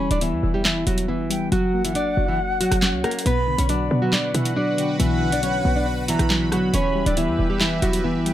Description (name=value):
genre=hip hop, drill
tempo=138 BPM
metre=4/4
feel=half-time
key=B harmonic minor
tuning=A4 = 440 Hz
part: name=nylon-string guitar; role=melody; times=0.0-8.3 s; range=E3 to D5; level=-23 LUFS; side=right 1 dB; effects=low-pass filter, ping-pong delay
part: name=concert flute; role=second line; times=0.0-8.3 s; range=F#5 to B5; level=-29 LUFS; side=left 2 dB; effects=ping-pong delay
part: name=soft electric-piano-like synth keys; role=accompaniment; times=0.0-8.3 s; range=B2 to F#5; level=-26 LUFS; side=left 4 dB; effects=chorus, low-pass filter
part: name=short 808-style bass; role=bass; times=0.0-8.3 s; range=D1 to B2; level=-25 LUFS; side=equal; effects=none
part: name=drill drum kit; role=drums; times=0.1-8.3 s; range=handclaps, hi-hat, rim click, snare drum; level=-24 LUFS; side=equal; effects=none
part: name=sweeping resonant pad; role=sustained chords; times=3.3-8.3 s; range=F#4 to B5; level=-31 LUFS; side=right 2 dB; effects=chorus
room=digital ambience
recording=none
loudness=-19 LUFS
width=side -12 dB against mid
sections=0.0-8.3 A section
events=none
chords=0.0 Em; 1.5 F#; 3.3 Bm; 6.7 Em